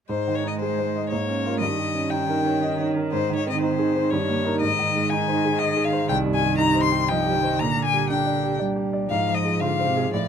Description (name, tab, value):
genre	quick classical-period movement for piano trio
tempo	120 BPM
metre	3/4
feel	rubato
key	Ab major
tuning	A4 = 439 Hz
part	rich violin	melody	0.1-10.3 s	C5 to C6	-25 LUFS	left 7 dB	none
part	warm cello	second line	0.1-10.3 s	C3 to Bb3	-27 LUFS	right 6 dB	none
part	clear concert grand piano	accompaniment	0.1-10.3 s	C2 to Eb5	-24 LUFS	right 1 dB	none
room	moderate studio ambience, RT60 0.5 s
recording	none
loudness	-20 LUFS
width	side -8 dB against mid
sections	0.1-10.3 A section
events	none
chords	0.1 Ab; 1.1 Bbm7/Ab; 1.6 Eb7/G; 3.1 Ab; 4.1 Eb/G; 4.6 Ab; 6.1 Cm; 7.6 Gm/Bb; 9.1 Fm/Ab